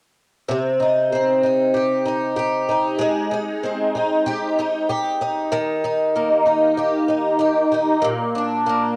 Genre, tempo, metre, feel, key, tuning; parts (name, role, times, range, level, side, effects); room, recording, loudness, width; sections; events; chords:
pop; 96 BPM; 4/4; swing 55% on 16ths; C minor; A4 = 443 Hz
picked twelve-string acoustic guitar; accompaniment; 0.5-9.0 s; Bb2 to G4; -20 LUFS; equal; double-tracked, cassette tape
moderate spring reverb, RT60 1.9 s, small room ambience; home recording on cassette; -20 LUFS; mono
0.5-9.0 A section
0.5 Cm; 3.0 Abmaj7; 5.5 Eb; 8.0 Bb